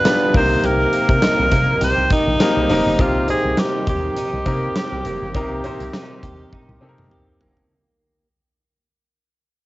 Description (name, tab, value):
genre	1980s-style pop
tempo	102 BPM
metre	4/4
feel	swing 55% on 16ths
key	C minor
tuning	A4 = 440 Hz
part	bright alto saxophone	melody	0.0-7.1 s	Eb4 to C5	-20 LUFS	equal	none
part	clear concert grand piano	accompaniment	0.0-7.7 s	C3 to C5	-22 LUFS	left 1 dB	none
part	direct-recorded clean electric guitar	riff	0.0-8.3 s	F3 to G4	-27 LUFS	right 3 dB	ensemble chorus
part	huge arena drum kit	drums	0.0-7.7 s	hi-hat, kick drum, snare drum, tambourine, toms	-22 LUFS	equal	cassette tape
part	solid FM bass	bass	0.3-7.6 s	F1 to C3	-24 LUFS	equal	none
room	moderate booth ambience, RT60 0.2 s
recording	home recording on cassette, nothing above 7.8 kHz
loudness	-16 LUFS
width	side -18 dB against mid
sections	0.0-3.0 A section; 3.0-7.7 B section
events	fade-out 3.0-7.7; drum fill 6.5-7.7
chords	0.3 Cm7